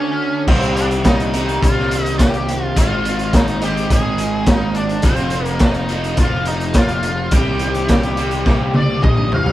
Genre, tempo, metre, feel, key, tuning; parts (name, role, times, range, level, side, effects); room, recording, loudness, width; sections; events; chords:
psychedelic rock; 105 BPM; 4/4; straight; C minor; A4 = 442 Hz
octave-fuzz lead guitar; melody; 0.0-9.5 s; C4 to F5; -22 LUFS; equal; wah, distortion
overdriven electric guitar; riff; 0.0-9.5 s; Ab2 to G4; -22 LUFS; equal
fuzz picked electric bass; bass; 0.5-9.5 s; F1 to C2; -22 LUFS; equal; overdrive
crunchy breakbeat drum kit; drums; 0.5-9.5 s; crash cymbal, hi-hat, kick drum, snare drum, toms; -17 LUFS; equal
wet studio reverb, RT60 0.6 s; band playing live in one room; -14 LUFS; side -14 dB against mid
0.0-9.5 A section
drum fill 8.5-9.5
0.5 Cm; 2.8 Ab; 5.0 F; 7.3 Cm